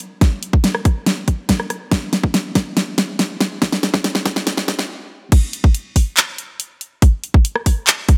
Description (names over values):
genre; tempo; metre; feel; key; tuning
future bass; 141 BPM; 4/4; half-time; none; none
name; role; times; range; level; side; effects
pop drum kit; drums; 0.0-8.2 s; crash cymbal, handclaps, hi-hat, rim click, snare drum; -20 LUFS; equal; none
electronic kick drum; drums; 0.2-8.2 s; none; -15 LUFS; equal; none
room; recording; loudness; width
light reverb, digital ambience; high-pass filter; -18 LUFS; mono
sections
0.0-5.3 A section; 5.3-8.2 B section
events
build-up 0.0-5.3; drum fill 0.0-4.9; filter sweep 0.0-5.3; stop 4.9-5.3; drop 5.3-8.2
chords
none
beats
| 0.21 0.64 1.06 1.49 | 1.92 2.34 2.77 3.19 | 3.62 4.04 4.47 4.89 | 5.32 5.75 6.17 6.60 | 7.02 7.45 7.87